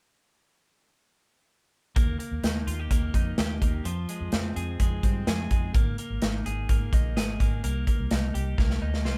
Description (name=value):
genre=jangly indie pop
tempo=127 BPM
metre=4/4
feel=straight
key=Eb major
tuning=A4 = 440 Hz
part: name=twelve-string electric guitar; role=arpeggios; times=2.0-9.2 s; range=F3 to Ab4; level=-38 LUFS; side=equal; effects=none
part: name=vintage muted fingered electric bass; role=bass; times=2.0-9.2 s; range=Ab1 to G2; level=-32 LUFS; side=equal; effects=none
part: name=modern studio drum kit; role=drums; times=2.0-9.2 s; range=hi-hat, kick drum, snare drum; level=-28 LUFS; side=equal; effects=none
room=light reverb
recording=band playing live in one room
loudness=-27 LUFS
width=mono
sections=2.0-9.2 A section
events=drum fill 8.6-9.2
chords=2.0 Eb; 3.9 Fm; 5.7 Absus2; 7.6 Cm7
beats=| 1.96 2.44 2.91 3.38 | 3.86 4.33 4.80 5.28 | 5.75 6.22 6.69 7.17 | 7.64 8.11 8.58 9.05